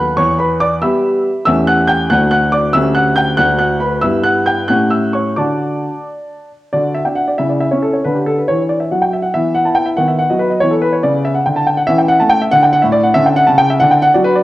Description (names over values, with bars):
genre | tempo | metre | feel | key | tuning
classical-period piano sonatina | 93 BPM (dotted quarters) | 6/8 | rubato | D major | A4 = 440 Hz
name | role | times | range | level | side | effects
warm grand piano | solo | 0.0-14.4 s | D2 to G6 | -11 LUFS | equal | none
room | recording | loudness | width
wet recital hall reverb, RT60 1.3 s | worn, warbling old tape, cassette tape, warbly pitch drift | -11 LUFS | side -16 dB against mid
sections
0.0-6.7 A section; 6.7-14.4 A section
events
none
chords
0.2 Em; 1.5 A7/E; 2.1 D; 2.7 A7/D; 3.4 D; 4.0 Em/G; 4.7 A7; 5.4 D; 7.4 C#m; 8.1 D; 9.3 E5; 10.0 B/D#; 10.6 E5; 11.9 A/E; 12.5 D5; 13.2 Em13; 13.8 D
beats
| 0.19 0.83 | 1.46 2.10 | 2.75 3.38 | 4.02 4.69 | 5.37 6.06 | 6.75 7.41 | 8.06 8.71 | 9.35 9.99 | 10.63 11.26 | 11.89 12.53 | 13.17 13.82